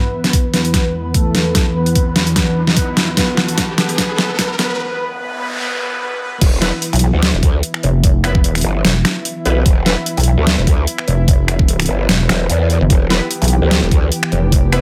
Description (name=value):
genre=heavy wobble dubstep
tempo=148 BPM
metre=4/4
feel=swing 55% on 16ths, half-time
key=E phrygian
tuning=A4 = 440 Hz
part: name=soft supersaw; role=melody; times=0.0-6.4 s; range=A3 to B4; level=-25 LUFS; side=equal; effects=low-pass filter, delay
part: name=lush unison pad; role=sustained chords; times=0.0-14.8 s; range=E2 to B4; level=-24 LUFS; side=equal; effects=chorus, sidechain pumping
part: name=riser and noise sweep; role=sound effects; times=1.0-6.4 s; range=none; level=-28 LUFS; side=equal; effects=none
part: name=dubstep drum kit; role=drums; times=0.2-14.8 s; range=crash cymbal, finger snaps, hi-hat, snare drum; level=-19 LUFS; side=equal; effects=overdrive
part: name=electronic kick drum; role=drums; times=0.3-14.6 s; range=none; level=-16 LUFS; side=equal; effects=overdrive
part: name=growl bass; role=bass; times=6.4-14.1 s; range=E1 to E2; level=-18 LUFS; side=equal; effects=chorus, overdrive
part: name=orchestra-hit-like synth stab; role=stabs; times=6.6-9.9, 13.1-14.8 s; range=B3 to B4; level=-25 LUFS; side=equal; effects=built-in reverb, delay
part: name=pulsing pluck wobble bass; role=bass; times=6.9-14.8 s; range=E1 to B1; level=-17 LUFS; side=equal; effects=chorus, overdrive
room=light reverb, digital ambience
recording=high-pass filter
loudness=-15 LUFS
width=mono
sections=0.0-6.4 A section; 6.4-14.8 B section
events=build-up 0.0-6.4; drum fill 0.0-4.8; filter sweep on supersaw synth 0.0-6.4; filter sweep 0.0-6.4; riser 1.0-4.8; break 4.8-6.4; noise sweep 4.8-6.4; drop 6.4-14.8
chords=0.0 E5